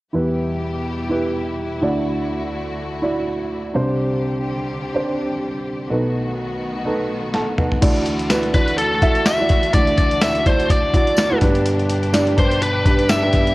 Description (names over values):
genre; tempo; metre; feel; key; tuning
piano-driven pop; 125 BPM; 4/4; swing 56% on 16ths; D mixolydian; A4 = 440 Hz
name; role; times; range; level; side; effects
dark upright piano; accompaniment; 0.1-13.5 s; G1 to A5; -20 LUFS; right 1 dB; none
rich studio string section; sustained chords; 0.1-13.5 s; B2 to G4; -29 LUFS; left 2 dB; none
boom bap sampler-style drum kit; drums; 7.3-13.5 s; crash cymbal, hi-hat, kick drum, snare drum, toms; -18 LUFS; equal; none
tambourine; percussion; 8.3-13.2 s; none; -32 LUFS; left 3 dB; none
biting lead guitar; melody; 8.5-13.5 s; A4 to E5; -19 LUFS; left 1 dB; overdrive
room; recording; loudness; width
light reverb; worn, warbling old tape, cassette tape, warbly pitch drift; -17 LUFS; side -19 dB against mid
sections
0.1-7.8 A section; 7.8-13.5 B section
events
upright piano fill 7.1-7.8; drum fill 7.3-7.8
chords
0.1 Em; 1.8 Dadd9; 3.7 Csus2; 5.9 B7; 7.8 Dadd9; 11.4 G